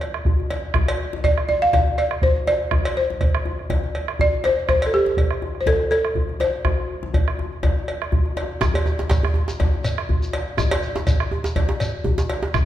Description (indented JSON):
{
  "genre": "west african traditional, West African drum ensemble",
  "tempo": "122 BPM",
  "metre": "4/4",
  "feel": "swing 55% on 16ths",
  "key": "unclear",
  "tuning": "A4 = 444 Hz",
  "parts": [
    { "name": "bombo", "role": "percussion", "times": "0.0-12.7 s", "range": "none", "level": "-22 LUFS", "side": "right 1 dB", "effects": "none" },
    { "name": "cowbell", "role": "percussion", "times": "0.0-12.4 s", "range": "none", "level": "-30 LUFS", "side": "right 2 dB", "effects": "none" },
    { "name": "djembe", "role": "percussion", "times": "0.0-12.7 s", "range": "none", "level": "-26 LUFS", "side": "left 4 dB", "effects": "none" },
    { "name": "balafon", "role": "melody", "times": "1.2-7.8 s", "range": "G4 to F5", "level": "-20 LUFS", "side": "equal", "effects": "none" },
    { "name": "djembe", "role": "percussion", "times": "8.6-12.5 s", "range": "none", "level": "-25 LUFS", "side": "right 2 dB", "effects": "none" },
    { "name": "shekere", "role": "percussion", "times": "8.6-12.7 s", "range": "none", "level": "-29 LUFS", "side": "left 2 dB", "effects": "none" }
  ],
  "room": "wet recital hall reverb, RT60 1.6 s",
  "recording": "none",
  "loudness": "-19 LUFS",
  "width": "side -12 dB against mid",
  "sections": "0.0-8.6 A section; 8.6-12.7 B section",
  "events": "none",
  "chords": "none",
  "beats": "0.26 | 0.75 1.24 1.73 2.23 | 2.72 3.21 3.70 4.19 | 4.68 5.17 5.67 6.16 | 6.65 7.14 7.63 8.12 | 8.61 9.11 9.60 10.09 | 10.58 11.07 11.56 12.05 | 12.54"
}